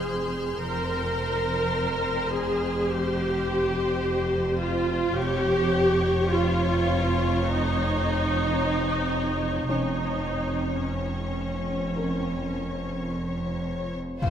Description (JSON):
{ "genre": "cinematic, suspense film score", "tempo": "53 BPM", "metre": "4/4", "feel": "straight", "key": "unclear", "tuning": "A4 = 435 Hz", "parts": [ { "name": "clear symphonic violin section", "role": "melody", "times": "0.0-14.3 s", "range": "C5 to Db5", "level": "-34 LUFS", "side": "left 5 dB", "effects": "none" }, { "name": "rich symphonic viola section", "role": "accompaniment", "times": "0.0-14.3 s", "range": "Ab3 to Bb4", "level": "-26 LUFS", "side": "equal", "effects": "none" }, { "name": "clear studio double bass section", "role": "bass", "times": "0.0-14.3 s", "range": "F1", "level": "-31 LUFS", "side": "right 2 dB", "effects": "none" }, { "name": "rich symphonic cello section", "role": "bass", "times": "0.0-14.3 s", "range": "F2", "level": "-30 LUFS", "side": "right 1 dB", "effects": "none" }, { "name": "bright symphonic violin section", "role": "texture", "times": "0.0-4.6, 14.2-14.3 s", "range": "C6 to G6", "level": "-38 LUFS", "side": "left 5 dB", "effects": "none" }, { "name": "felt-muted upright piano", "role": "texture", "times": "0.0-14.3 s", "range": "Db4 to F5", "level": "-37 LUFS", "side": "left 3 dB", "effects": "none" }, { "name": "rich symphonic violin section", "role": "second line", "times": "14.2-14.3 s", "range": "F4 to C5", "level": "-35 LUFS", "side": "equal", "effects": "none" }, { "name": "impact", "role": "sound effects", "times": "14.2-14.3 s", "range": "none", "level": "-23 LUFS", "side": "left 2 dB", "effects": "none" } ], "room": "wet concert hall reverb, RT60 2.4 s", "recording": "none", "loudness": "-23 LUFS", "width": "side -9 dB against mid", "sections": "0.0-14.2 A section", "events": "none", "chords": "0.0 Fm; 5.2 Bbm/F" }